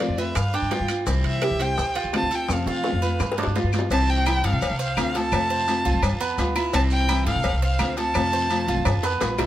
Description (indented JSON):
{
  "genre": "latin, Cuban son and guajira",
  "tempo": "170 BPM",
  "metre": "4/4",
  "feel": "straight",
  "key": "C major",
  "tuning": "A4 = 444 Hz",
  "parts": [
    { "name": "warm violin", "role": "melody", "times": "0.0-9.0 s", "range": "D5 to A5", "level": "-26 LUFS", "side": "right 1 dB", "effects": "analog delay" },
    { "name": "nylon-string guitar", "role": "accompaniment", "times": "0.0-9.5 s", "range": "C3 to F4", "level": "-28 LUFS", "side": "left 3 dB", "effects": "none" },
    { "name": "Cuban tres", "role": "arpeggios", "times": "0.0-9.5 s", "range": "B3 to C5", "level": "-29 LUFS", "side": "right 5 dB", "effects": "none" },
    { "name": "upright bass", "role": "bass", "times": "0.0-9.5 s", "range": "A1 to F3", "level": "-25 LUFS", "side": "equal", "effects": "none" },
    { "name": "bongos and cowbell", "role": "percussion", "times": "0.0-9.5 s", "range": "none", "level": "-32 LUFS", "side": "left 5 dB", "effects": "none" },
    { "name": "guiro", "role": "percussion", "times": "0.0-9.5 s", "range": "none", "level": "-38 LUFS", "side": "left 3 dB", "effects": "none" },
    { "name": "maracas", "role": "percussion", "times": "0.0-9.5 s", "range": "none", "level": "-40 LUFS", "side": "right 4 dB", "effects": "none" },
    { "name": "timbales and agogo bells", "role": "percussion", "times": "0.0-9.5 s", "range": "none", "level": "-32 LUFS", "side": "right 6 dB", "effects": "none" },
    { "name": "claves", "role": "percussion", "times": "0.4-9.5 s", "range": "none", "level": "-34 LUFS", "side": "left 8 dB", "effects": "none" }
  ],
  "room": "light reverb",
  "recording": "none",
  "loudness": "-20 LUFS",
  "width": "side -13 dB against mid",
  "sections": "0.0-3.9 A section; 3.9-9.5 B section",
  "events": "drum fill 2.5-3.9, 8.9-9.5",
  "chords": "0.4 G7; 1.1 C; 1.8 Dm7; 2.5 F; 3.2 G7; 3.9 C; 4.6 Dm7; 5.3 F; 6.0 G7; 6.7 C; 7.4 Dm7; 8.1 F; 8.9 G7"
}